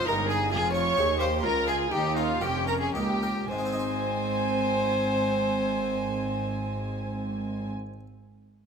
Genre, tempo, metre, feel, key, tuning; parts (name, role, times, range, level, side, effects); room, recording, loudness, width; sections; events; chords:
classical, baroque-style concerto movement with solo episodes; 105-135 BPM; 3/4; straight; Ab major; A4 = 440 Hz
rich chamber violin section; melody; 0.0-7.7 s; F5 to Db6; -35 LUFS; left 1 dB
warm violin; melody; 0.0-7.7 s; F4 to Db5; -30 LUFS; left 2 dB
rich chamber violin section; second line; 0.0-7.7 s; F4 to Ab5; -32 LUFS; right 1 dB
dark chamber viola section; accompaniment; 0.0-7.7 s; Bb3 to Ab4; -34 LUFS; equal
harpsichord; accompaniment; 0.0-8.1 s; Db2 to F5; -37 LUFS; equal
rich chamber double bass section; bass; 0.0-7.7 s; F1 to Eb2; -34 LUFS; right 3 dB
warm chamber cello section; bass; 0.0-7.7 s; Db2 to Ab2; -33 LUFS; right 4 dB
light reverb; close, detailed microphones; -25 LUFS; side -6 dB against mid
0.0-3.5 A section; 3.5-6.9 B section
slowing down 0.0-3.5
0.0 Ab5; 0.5 Fm; 1.4 Bbm/Db; 1.9 Eb7; 3.5 Ab